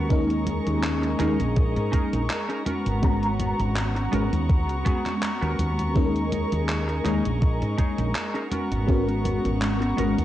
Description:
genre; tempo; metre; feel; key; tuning
vaporwave; 82 BPM; 4/4; swing 55% on 16ths; G# minor; A4 = 440 Hz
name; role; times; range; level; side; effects
mellow FM electric piano; accompaniment; 0.0-10.2 s; G#3 to A#5; -27 LUFS; equal; phaser, ensemble chorus, cassette tape, tape echo
dark studio string section; sustained chords; 0.0-10.2 s; B3 to C#6; -32 LUFS; left 1 dB; none
semi-hollow electric guitar; riff; 0.0-10.2 s; B3 to C#5; -33 LUFS; right 3 dB; analog chorus, tape echo
woody fretless electric bass; bass; 0.0-10.2 s; G#1 to G#2; -26 LUFS; equal; none
electronic kick drum; drums; 0.1-9.0 s; none; -22 LUFS; equal; vintage 12-bit sampler grit
gated 80s digital drum machine; drums; 0.1-10.2 s; congas, handclaps, hi-hat; -31 LUFS; left 1 dB; gated reverb, vintage 12-bit sampler grit
room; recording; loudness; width
digital ambience; dry, gritty hardware recording, cassette tape, nothing above 10.6 kHz; -22 LUFS; side -13 dB against mid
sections
0.0-10.2 A section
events
none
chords
0.1 D#7sus4; 2.7 G#m11; 6.0 D#7sus4; 8.5 G#m11

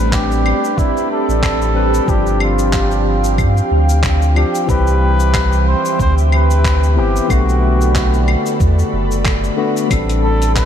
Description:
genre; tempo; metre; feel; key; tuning
sunset chillout; 92 BPM; 4/4; swing 56% on 16ths; A minor; A4 = 442 Hz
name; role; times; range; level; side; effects
trumpet with cup mute; melody; 0.0-10.7 s; E4 to C5; -22 LUFS; equal; diffuse ambient delay
barky tine electric piano; accompaniment; 0.0-10.7 s; D3 to B4; -20 LUFS; moving between left 5 dB and right 6 dB; medium stereo tremolo, auto-pan, tape echo
ethereal airy pad; sustained chords; 0.0-10.7 s; C4 to B5; -21 LUFS; equal; ensemble chorus, built-in reverb, vintage 12-bit sampler grit
warm sub bass; bass; 0.0-10.7 s; F#1 to G2; -15 LUFS; equal; tube saturation
dusty soul sampler-style drum kit; drums; 0.1-10.7 s; cabasa, claves, handclaps, hi-hat; -25 LUFS; left 1 dB; none
electronic kick drum; drums; 0.1-10.7 s; none; -19 LUFS; equal; none
room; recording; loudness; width
moderate cathedral reverb, RT60 7.4 s; dreamy mix soaked in reverb; -12 LUFS; side -9 dB against mid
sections
0.0-10.7 A section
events
none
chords
0.0 Am11; 2.1 G7sus4; 4.7 Cmaj7; 7.3 Bm7; 9.9 Am11

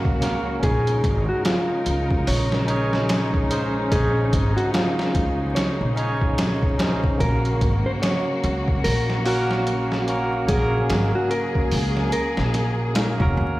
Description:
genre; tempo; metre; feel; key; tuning
trip hop; 73 BPM; 4/4; swing 60% on 16ths; Bb minor; A4 = 442 Hz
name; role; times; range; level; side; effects
barky tine electric piano; accompaniment; 0.0-13.6 s; Bb3 to Db5; -27 LUFS; equal; harmonic tremolo, tape echo
muted studio string section; sustained chords; 0.0-13.6 s; Db3 to Bb4; -29 LUFS; equal; none
upright bass; bass; 0.0-13.6 s; F1 to Eb2; -24 LUFS; equal; none
trip hop sampler-style drum kit; drums; 0.1-13.4 s; hi-hat, kick drum, snare drum; -24 LUFS; equal; overdrive
mellow electric guitar; melody; 0.6-13.3 s; F4 to Db5; -26 LUFS; equal; tape echo
room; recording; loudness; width
light reverb, digital ambience; played on a big sound system in a bare room, stone room reverb, vinyl crackle; -19 LUFS; side -17 dB against mid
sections
0.0-13.6 A section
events
none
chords
0.0 Gb; 0.6 Bbm11; 7.2 Gb

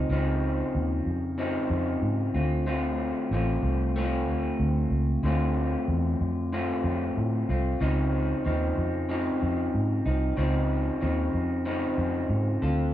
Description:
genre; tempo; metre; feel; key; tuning
indie pop, bedroom pop; 93 BPM; 4/4; swing 55% on 16ths; unclear; A4 = 442 Hz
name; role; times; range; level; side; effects
electric guitar through a small old amp; accompaniment; 0.0-12.9 s; Db3 to A4; -28 LUFS; left 1 dB; warbly pitch drift
vintage muted fingered electric bass; bass; 0.0-12.9 s; A1 to A2; -27 LUFS; equal; none
room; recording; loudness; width
moderate large studio reverb, RT60 0.9 s; band playing live in one room; -24 LUFS; side -12 dB against mid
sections
0.0-12.9 A section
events
none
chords
0.0 Dbmaj9; 2.3 Dm7; 7.8 Dbmaj9

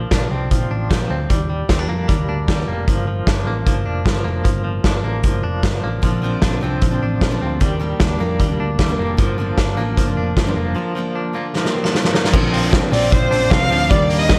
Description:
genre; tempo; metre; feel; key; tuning
jangly indie pop; 152 BPM; 4/4; straight; Bb major; A4 = 439 Hz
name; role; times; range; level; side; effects
direct-recorded clean electric guitar; arpeggios; 0.0-14.4 s; F3 to D4; -27 LUFS; equal; tremolo, slapback echo
hollow-body short-scale picked electric bass; bass; 0.0-14.4 s; F1 to F2; -24 LUFS; equal; none
vintage drum kit; drums; 0.1-14.4 s; crash cymbal, hi-hat, kick drum, snare drum; -21 LUFS; equal; none
picked steel-string acoustic guitar; accompaniment; 6.0-14.4 s; G2 to D4; -26 LUFS; equal; slapback echo
warm violin; melody; 12.9-14.4 s; C5 to F5; -20 LUFS; equal; slapback echo
room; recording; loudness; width
light reverb, small room ambience; none; -18 LUFS; mono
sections
0.0-12.3 A section; 12.3-14.4 B section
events
drum fill 11.5-12.3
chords
0.0 Bbadd9; 1.3 Ebmaj7; 2.9 Gm7; 6.0 Bbadd9; 7.6 Ebmaj7; 9.2 Gm7; 12.3 Bbadd9

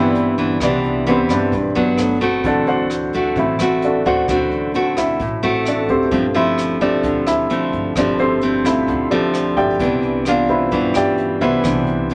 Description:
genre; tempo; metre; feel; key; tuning
bossa nova; 130 BPM; 4/4; straight; unclear; A4 = 439 Hz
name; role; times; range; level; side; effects
nylon-string guitar; accompaniment; 0.0-12.1 s; G2 to F#4; -21 LUFS; equal; none
warm baby grand piano; accompaniment; 0.0-12.1 s; E3 to A5; -21 LUFS; equal; none
upright bass; bass; 0.0-12.1 s; G1 to G2; -32 LUFS; equal; none
jazz brush drum kit; drums; 0.1-12.1 s; hi-hat, kick drum, rim click; -34 LUFS; equal; none
room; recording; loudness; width
moderate studio reverb, RT60 0.7 s; none; -18 LUFS; mono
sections
0.0-2.4 A section; 2.4-12.1 A section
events
grand piano solo 0.0-12.1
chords
0.0 Cmaj9; 2.0 Gmaj7; 2.4 D7; 6.1 G9sus4; 9.8 Cmaj9

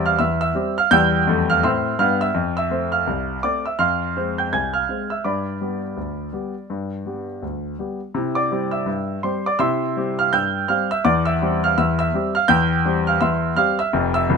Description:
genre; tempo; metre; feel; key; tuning
ragtime piano; 83 BPM; 2/4; swing 59% on 16ths; C major; A4 = 439 Hz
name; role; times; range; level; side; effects
clear concert grand piano; solo; 0.0-14.4 s; C1 to Ab6; -18 LUFS; equal; none
room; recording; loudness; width
light reverb; minimal, uncompressed stereo recording; -18 LUFS; side -5 dB against mid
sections
0.0-8.2 A section; 8.2-14.4 A section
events
none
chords
0.0 C/E; 2.4 F; 3.8 Fm; 5.2 G; 8.2 C; 11.0 C/E

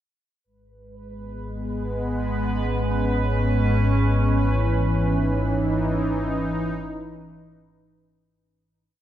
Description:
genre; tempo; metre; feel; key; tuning
dark ambient drone; free time; none; none; G# minor; A4 = 440 Hz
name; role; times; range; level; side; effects
deep rumbling drone; drone; 1.3-8.4 s; G#1 to G#2; -24 LUFS; left 1 dB; built-in reverb, lush chorus
bubbling stepped-filter texture; texture; 0.4-8.3 s; B4; -32 LUFS; right 5 dB; chorus, built-in reverb
sweeping resonant pad; sustained chords; 0.5-8.3 s; E3 to D#4; -25 LUFS; right 1 dB; chorus
room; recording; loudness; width
wet cathedral reverb, RT60 5.8 s; in a vast, echoing space; -20 LUFS; side -11 dB against mid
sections
0.5-8.3 A section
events
fade-in on synth drone 0.5-8.3; fade-in on analog synth pad 0.5-8.3; fade-in on synth texture 0.5-8.3; fade-out 4.4-8.3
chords
0.5 G#m; 4.4 C#m

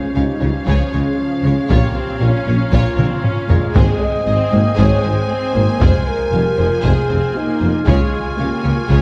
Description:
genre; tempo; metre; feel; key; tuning
cinematic, epic orchestral film score; 117 BPM; 4/4; straight; unclear; A4 = 440 Hz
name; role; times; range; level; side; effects
warm symphonic violin section; melody; 0.0-9.0 s; F5 to Ab5; -33 LUFS; equal; none
warm symphonic viola section; accompaniment; 0.0-9.0 s; F3 to Db4; -27 LUFS; equal; none
mellow French horn section; sustained chords; 0.0-9.0 s; Db4 to Eb5; -24 LUFS; equal; none
mellow woodwind section; sustained chords; 0.0-9.0 s; Ab3 to F5; -29 LUFS; equal; none
warm symphonic violin section; second line; 0.2-9.0 s; F4 to F5; -31 LUFS; equal; none
dark symphonic double bass section; bass; 0.2-9.0 s; F1 to Db2; -23 LUFS; equal; none
rich symphonic cello section; bass; 0.2-9.0 s; F2 to Db3; -23 LUFS; equal; none
warm tuba; bass; 0.2-9.0 s; F1 to Db2; -26 LUFS; equal; none
taiko ensemble; drums; 0.7-9.0 s; none; -21 LUFS; equal; none
room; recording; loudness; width
moderate scoring stage reverb, RT60 2.0 s; dark, warm production; -16 LUFS; mono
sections
0.0-9.0 A section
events
drum fill 3.0-3.8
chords
0.0 Db; 1.7 Bbm; 3.8 Ab; 5.8 Fm; 7.9 Db

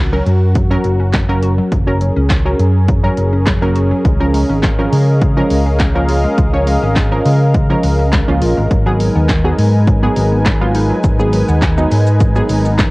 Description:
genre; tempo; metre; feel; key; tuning
dance-pop; 103 BPM; 4/4; straight; F# major; A4 = 442 Hz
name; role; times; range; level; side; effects
warm analog pad; sustained chords; 0.0-12.9 s; G#3 to G#5; -19 LUFS; equal; chorus, sidechain pumping, cassette tape
fingered electric bass; bass; 0.0-12.9 s; F#1 to C#3; -14 LUFS; equal; sidechain pumping
punchy chord stab; accompaniment; 0.1-12.7 s; E#3 to C#5; -20 LUFS; right 1 dB; chorus, sidechain pumping, cassette tape
hollow square pluck; arpeggios; 0.3-12.9 s; F#3 to F#4; -25 LUFS; left 2 dB; chorus, sidechain pumping, cassette tape, tape echo
punchy analog drum machine; drums; 0.3-12.9 s; handclaps, hi-hat, kick drum, shaker, snare drum; -16 LUFS; equal; cassette tape
room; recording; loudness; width
light reverb; home recording on cassette; -11 LUFS; side -22 dB against mid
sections
0.0-12.9 A section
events
none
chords
0.0 F#; 4.0 C#6; 8.7 G#m7

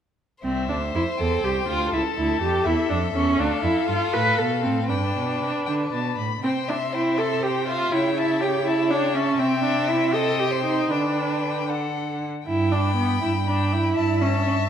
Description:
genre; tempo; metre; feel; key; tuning
quick classical-period movement for string quartet; 81 BPM (dotted quarters); 6/8; rubato; C major, G major from 9.4 s; A4 = 441 Hz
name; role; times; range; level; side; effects
rich violin; second line; 0.4-14.7 s; A4 to B5; -30 LUFS; left 4 dB; none
rich viola; accompaniment; 0.4-14.5 s; B3 to B4; -23 LUFS; right 1 dB; none
rich cello; bass; 0.4-14.6 s; C2 to D3; -27 LUFS; right 2 dB; none
rich violin; melody; 0.5-14.7 s; E5 to C6; -30 LUFS; left 10 dB; none
room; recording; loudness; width
moderate recital hall reverb, RT60 1.4 s; none; -20 LUFS; side -8 dB against mid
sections
0.4-12.5 A section; 12.5-14.7 B section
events
none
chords
0.4 C; 1.9 A/C#; 3.4 Dm; 4.9 G; 6.4 C; 7.9 A7/C#; 9.4 C; 10.1 Cm; 10.9 G/D; 12.5 G; 14.0 A5/G

